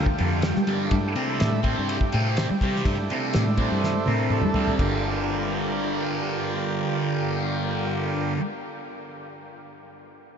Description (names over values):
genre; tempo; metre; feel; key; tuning
psychedelic rock; 124 BPM; 4/4; straight; G dorian; A4 = 440 Hz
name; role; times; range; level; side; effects
combo organ; sustained chords; 0.0-8.3 s; A3 to G5; -29 LUFS; right 4 dB; none
thick fuzz guitar; riff; 0.0-8.4 s; G2 to C4; -27 LUFS; equal; distortion, phaser
fingered electric bass; bass; 0.0-8.3 s; G1 to G3; -26 LUFS; equal; none
cloth-damped thuddy drum kit; drums; 0.1-4.9 s; crash cymbal, kick drum, ride cymbal, snare drum, toms; -28 LUFS; equal; none
room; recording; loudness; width
moderate huge ambient reverb, RT60 8.5 s; dreamy mix soaked in reverb, nothing above 7.7 kHz; -22 LUFS; side -7 dB against mid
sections
0.0-4.8 A section; 4.8-8.7 B section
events
transistor combo organ solo 0.0-4.8; drum fill 3.8-4.8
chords
0.0 G7(no3); 0.9 C6/G; 4.8 Gm7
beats
0.43 | 0.92 1.40 1.88 2.37 | 2.85 3.34 3.82 4.31 | 4.80 5.28 5.77 6.25 | 6.74 7.23 7.71 8.20